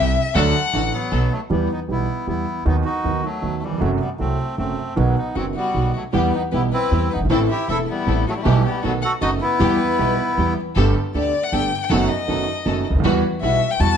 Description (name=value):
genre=tango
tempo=156 BPM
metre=3/4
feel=rubato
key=E harmonic minor, G major from 10.8 s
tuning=A4 = 440 Hz
part: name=warm violin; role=second line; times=0.0-1.1, 5.4-14.0 s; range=E4 to A5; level=-24 LUFS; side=left 7 dB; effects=none
part: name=warm concert grand piano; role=accompaniment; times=0.0-14.0 s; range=E1 to A4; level=-22 LUFS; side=right 3 dB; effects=none
part: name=warm studio string section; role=stabs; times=0.0-1.3, 6.1-14.0 s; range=G3 to A4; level=-28 LUFS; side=equal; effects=none
part: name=upright bass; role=bass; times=0.0-14.0 s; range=E1 to E2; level=-22 LUFS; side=equal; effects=none
part: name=bandoneon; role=melody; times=0.9-10.5 s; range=E3 to A4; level=-24 LUFS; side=equal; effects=none
room=moderate large studio reverb, RT60 1.2 s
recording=nothing above 10.6 kHz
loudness=-18 LUFS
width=side -8 dB against mid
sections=0.0-1.5 A section; 1.5-10.8 B section; 10.8-14.0 A section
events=violin solo 0.0-1.5, 10.8-14.0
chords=0.4 D; 1.1 B7; 1.5 Em; 2.7 B/D#; 3.8 F#dim; 5.0 B; 6.1 Em; 7.3 Am; 8.5 Em/B; 8.8 B7; 9.6 Em; 10.8 Gadd9; 11.9 B7/F#; 13.0 Emadd9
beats=| 0.35 0.73 1.12 | 1.50 1.89 2.28 | 2.66 3.05 3.43 | 3.82 4.20 4.58 | 4.97 5.36 5.75 | 6.14 6.52 6.91 | 7.30 7.68 8.07 | 8.45 8.84 9.22 | 9.61 9.99 10.38 | 10.77 11.15 11.53 | 11.91 12.29 12.66 | 13.04 13.42 13.80